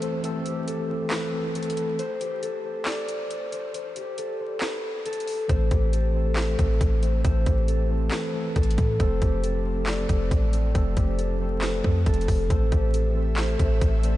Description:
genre	hip hop, trap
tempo	137 BPM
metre	4/4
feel	half-time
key	A minor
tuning	A4 = 440 Hz
part	concert harp	melody	0.0-14.2 s	G4 to E5	-30 LUFS	left 2 dB	analog delay
part	mellow tine electric piano	accompaniment	0.0-2.0, 5.5-14.2 s	E3 to A4	-31 LUFS	equal	medium stereo tremolo
part	trap drum kit	drums	0.0-14.1 s	handclaps, hi-hat, kick drum, snare drum	-27 LUFS	equal	overdrive
part	clean 808-style bass	bass	5.5-14.2 s	F1 to A2	-23 LUFS	equal	none
part	ethereal airy pad	sustained chords	12.9-14.2 s	A3 to E5	-43 LUFS	equal	ensemble chorus, built-in reverb
part	breathy mellow large pan pipes	second line	13.4-14.2 s	C5 to D5	-35 LUFS	right 4 dB	analog delay
room	light reverb, digital ambience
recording	vinyl crackle, nothing above 10.3 kHz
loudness	-22 LUFS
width	side -15 dB against mid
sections	0.0-12.5 A section; 12.5-14.2 B section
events	break 0.0-5.5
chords	0.0 Am; 2.0 N.C.; 5.5 Am; 9.0 F; 12.5 Am

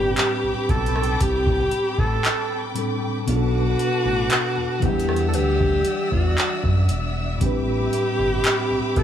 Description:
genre	contemporary R&B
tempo	58 BPM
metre	4/4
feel	straight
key	A dorian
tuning	A4 = 440 Hz
part	warm alto saxophone	melody	0.0-9.0 s	F#4 to A4	-24 LUFS	equal	tape echo
part	mellow tine electric piano	accompaniment	0.0-9.0 s	A2 to F#5	-27 LUFS	left 1 dB	medium stereo tremolo
part	dark studio string section	sustained chords	0.0-9.0 s	C4 to E6	-30 LUFS	equal	sidechain pumping
part	smooth synth bass	bass	0.0-9.0 s	E1 to F#2	-24 LUFS	equal	none
part	mallet-like synth pluck	texture	0.0-9.0 s	G4 to A5	-35 LUFS	right 2 dB	none
part	booming analog drum machine	drums	0.2-9.0 s	handclaps, hi-hat, kick drum, rim click	-24 LUFS	equal	none
room	little or no reverb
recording	none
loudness	-19 LUFS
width	side -10 dB against mid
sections	0.0-9.0 A section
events	none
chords	0.0 Am11; 3.3 Bm7; 4.8 Em9; 7.4 Am11

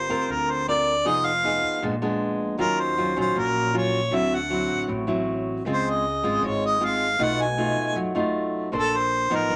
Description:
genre	bossa nova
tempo	156 BPM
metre	4/4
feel	straight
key	unclear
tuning	A4 = 441 Hz
part	warm harmonica	melody	0.0-9.6 s	A4 to Ab5	-26 LUFS	equal	none
part	nylon-string guitar	accompaniment	0.0-9.6 s	G2 to C5	-27 LUFS	equal	none
part	upright bass	bass	0.0-9.6 s	F1 to F#2	-38 LUFS	equal	none
room	moderate small room ambience, RT60 0.5 s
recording	none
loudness	-24 LUFS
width	mono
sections	0.0-9.6 A section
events	none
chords	0.0 Gm7; 1.1 Fm7b5; 1.8 Bb7b9; 2.6 Ebm9; 4.1 D9; 5.7 Dbmaj7; 7.2 B7#11; 8.7 Bbmaj9

